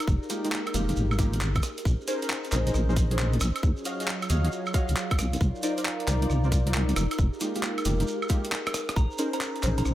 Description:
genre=UK garage, two-step garage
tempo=135 BPM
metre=4/4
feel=swing 66% on 16ths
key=Bb dorian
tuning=A4 = 439 Hz
part: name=airy breathy pad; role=sustained chords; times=0.0-9.9 s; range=Db4 to D5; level=-38 LUFS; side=equal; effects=chorus, sidechain pumping
part: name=breakbeat sampler-style drum kit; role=drums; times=0.0-9.9 s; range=handclaps, hi-hat, rim click, woodblock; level=-32 LUFS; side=right 1 dB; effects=none
part: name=shekere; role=percussion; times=0.0-9.9 s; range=none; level=-40 LUFS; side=right 3 dB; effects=none
part: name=warbly tape-like pad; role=texture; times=0.0-9.9 s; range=Gb3 to Bb5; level=-36 LUFS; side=equal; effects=chorus, built-in reverb, sidechain pumping
part: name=deep soft wobble bass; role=bass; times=0.1-9.9 s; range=F1 to Eb2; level=-25 LUFS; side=equal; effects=chorus
part: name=electronic kick drum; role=drums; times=0.1-9.1 s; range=none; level=-25 LUFS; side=equal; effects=overdrive
part: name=deep mellow chord stab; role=stabs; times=0.3-9.9 s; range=Ab3 to F5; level=-32 LUFS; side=equal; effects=ensemble chorus, vintage 12-bit sampler grit, analog delay
part: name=soft synth bell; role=melody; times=9.0-9.9 s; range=Bb5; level=-37 LUFS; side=right 4 dB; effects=chorus, phaser
room=light reverb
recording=none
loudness=-24 LUFS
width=side -14 dB against mid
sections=0.0-9.9 A section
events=drum fill 8.5-9.0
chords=0.0 Fm11; 1.9 Bbm11; 3.6 Ebm11; 5.2 Cm11; 7.0 Fm11; 9.0 Bbm11

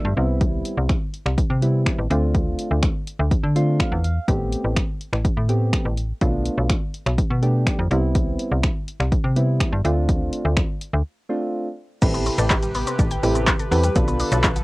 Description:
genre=dance-pop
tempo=124 BPM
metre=4/4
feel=straight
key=A minor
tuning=A4 = 440 Hz
part: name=soft electric-piano-like synth keys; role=accompaniment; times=0.0-14.5 s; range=G3 to C6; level=-25 LUFS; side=right 1 dB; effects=chorus, cassette tape, plate reverb
part: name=slap-like FM bass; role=bass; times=0.0-14.6 s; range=A1 to D3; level=-21 LUFS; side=equal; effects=sidechain pumping
part: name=punchy analog drum machine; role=drums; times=0.4-14.6 s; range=crash cymbal, finger snaps, handclaps, hi-hat, kick drum, shaker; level=-21 LUFS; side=equal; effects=overdrive, cassette tape
part: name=airy breathy pad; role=sustained chords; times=12.0-14.6 s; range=C3 to B4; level=-28 LUFS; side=equal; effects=chorus, sidechain pumping, cassette tape, plate reverb
part: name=mallet-like synth pluck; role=arpeggios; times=12.0-14.6 s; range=F3 to G5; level=-30 LUFS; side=left 3 dB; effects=chorus, sidechain pumping, cassette tape, plate reverb, analog delay
room=little or no reverb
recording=home recording on cassette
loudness=-19 LUFS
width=side -21 dB against mid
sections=0.0-12.0 A section; 12.0-14.6 B section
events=synth keys fill 0.0-0.4, 3.3-4.3; break 11.1-12.0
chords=0.2 Cmaj7; 2.1 Dm7; 4.3 Am9; 6.2 Bm7b5; 7.9 Cmaj7; 9.8 Dm7; 12.0 Am9; 14.0 Bm7b5

